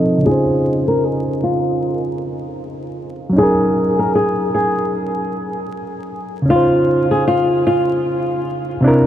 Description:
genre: lo-fi hip hop.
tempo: 77 BPM.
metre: 4/4.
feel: swing 58% on 16ths.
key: Db major.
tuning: A4 = 441 Hz.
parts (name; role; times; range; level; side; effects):
flamenco guitar; melody; 0.0-9.0 s; F4 to Bb4; -18 LUFS; left 1 dB; low-pass filter, diffuse ambient delay.
bright reed electric piano; accompaniment; 0.0-9.1 s; C3 to Eb5; -17 LUFS; equal; low-pass filter.
room: moderate huge ambient reverb, RT60 8.4 s.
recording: dreamy mix soaked in reverb, vinyl crackle.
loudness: -14 LUFS.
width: side -11 dB against mid.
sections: 0.0-9.1 A section.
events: filter sweep 0.0-9.1.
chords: 0.2 Dbmaj7; 3.4 Gb69; 6.5 Dbmaj7.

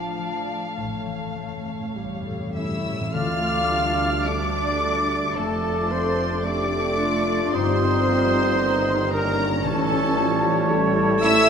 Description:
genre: classical.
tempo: 50-58 BPM.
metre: 4/4.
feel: rubato.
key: D minor.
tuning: A4 = 440 Hz.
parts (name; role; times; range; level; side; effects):
muted symphonic violin section; melody; 0.0-11.5 s; C#5 to F6; -28 LUFS; left 5 dB; none.
mellow flute section; second line; 0.0-11.5 s; A5 to D6; -32 LUFS; left 2 dB; none.
muted chamber violin section; second line; 0.0-11.5 s; A4 to F5; -31 LUFS; equal; none.
muted chamber viola section; accompaniment; 0.0-11.5 s; Eb3 to E4; -29 LUFS; right 2 dB; none.
concert harp; arpeggios; 0.0-11.5 s; F2 to A4; -32 LUFS; left 7 dB; none.
muted chamber cello section; bass; 0.0-11.5 s; A3 to F4; -30 LUFS; right 1 dB; none.
muted chamber double bass section; bass; 0.0-11.5 s; F1 to D2; -32 LUFS; right 3 dB; none.
timpani; percussion; 0.8-11.2 s; A2; -33 LUFS; left 2 dB; none.
mellow trumpet; stabs; 2.6-11.5 s; A4 to F5; -27 LUFS; right 2 dB; none.
warm oboe; second line; 3.1-11.5 s; C#5 to Eb5; -31 LUFS; right 3 dB; none.
warm bassoon; accompaniment; 3.1-11.5 s; G3 to A3; -31 LUFS; right 4 dB; none.
mellow tuba; bass; 3.1-11.5 s; F1 to D2; -30 LUFS; right 4 dB; none.
mellow French horn section; sustained chords; 5.4-11.5 s; C#4 to A4; -27 LUFS; left 4 dB; none.
room: wet scoring stage reverb, RT60 1.4 s.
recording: none.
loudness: -20 LUFS.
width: side -7 dB against mid.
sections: 0.0-3.1 A section; 3.1-11.5 B section.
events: timpani fill 0.8-3.1.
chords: 0.0 Dm/A; 0.8 A; 3.1 Dm; 5.4 Dm/F; 7.5 Eb/G; 9.6 A7.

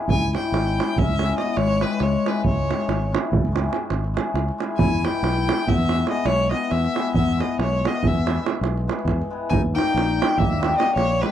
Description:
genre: balkan folk, Balkan wedding band.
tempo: 280 BPM (eighths).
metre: 11/8.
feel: straight.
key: C# dorian sharp4.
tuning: A4 = 440 Hz.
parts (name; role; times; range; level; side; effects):
cimbalom; accompaniment; 0.0-11.3 s; G3 to G#4; -28 LUFS; left 3 dB; none.
rich violin; melody; 0.1-11.3 s; B4 to G#5; -26 LUFS; equal; none.
mellow clarinet; second line; 0.1-11.3 s; G#3 to E4; -26 LUFS; left 9 dB; none.
fingered electric bass; bass; 0.1-11.2 s; G#1 to E2; -24 LUFS; equal; none.
davul; percussion; 0.1-11.3 s; none; -24 LUFS; right 5 dB; none.
room: light reverb.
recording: dry, close 1970s-style studio recording.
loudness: -19 LUFS.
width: side -10 dB against mid.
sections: 0.1-11.3 A section.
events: none.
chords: 0.1 C#m; 4.8 E; 9.5 D#.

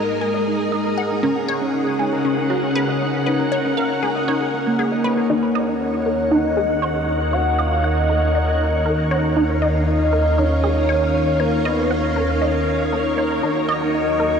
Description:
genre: ambient, sequencer-driven space music.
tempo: 118 BPM.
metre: 4/4.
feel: straight.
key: Eb minor.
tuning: A4 = 438 Hz.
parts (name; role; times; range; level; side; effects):
string machine, full ensemble; sustained chords; 0.0-14.4 s; Db3 to Gb5; -21 LUFS; equal; ensemble chorus, shimmer reverb.
Celtic harp; arpeggios; 0.0-7.9 s; Bb3 to Eb5; -24 LUFS; left 1 dB; auto-pan, shimmer reverb, analog delay.
resonant blip pluck; riff; 0.0-14.3 s; Db4 to Ab5; -24 LUFS; right 1 dB; phaser, shimmer reverb, analog delay.
fat analog bass; bass; 5.3-14.4 s; Eb2; -22 LUFS; equal; none.
soft octave-layered synth lead; melody; 5.8-14.4 s; Bb4 to Gb5; -22 LUFS; left 1 dB; chorus, phaser, shimmer reverb, analog delay.
room: wet cathedral reverb, RT60 5.8 s.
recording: in a vast, echoing space, cassette tape.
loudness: -17 LUFS.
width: side -6 dB against mid.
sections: 0.0-5.3 A section; 5.3-14.4 B section.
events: filter sweep on synth arpeggio sound 5.3-14.4.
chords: 0.0 Absus2; 1.2 Dbsus4; 5.3 Ebm7.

